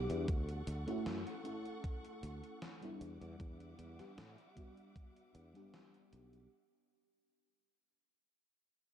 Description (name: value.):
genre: vaporwave.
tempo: 77 BPM.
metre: 4/4.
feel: straight.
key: E dorian.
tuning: A4 = 440 Hz.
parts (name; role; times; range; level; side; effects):
FM electric piano with soft pad layer; accompaniment; 0.0-6.5 s; G3 to A4; -46 LUFS; equal; ensemble chorus, analog delay.
warm studio string section; sustained chords; 0.0-6.5 s; G3 to D6; -55 LUFS; right 1 dB; none.
sustaining fretless electric bass; bass; 0.0-6.5 s; B1 to A2; -44 LUFS; equal; tube saturation.
gated 80s digital drum machine; drums; 0.1-6.5 s; hi-hat, snare drum; -53 LUFS; left 1 dB; gated reverb, gated reverb snare.
electronic kick drum; drums; 0.3-5.1 s; none; -41 LUFS; equal; none.
room: light reverb, digital ambience.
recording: dark, warm production.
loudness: -41 LUFS.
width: side -10 dB against mid.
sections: 0.0-6.5 A section.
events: fade-out 0.0-6.5.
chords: 0.3 Dmaj7; 3.0 Em9.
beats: | 0.28 1.06 1.84 2.62 | 3.40 4.18 4.96 5.74.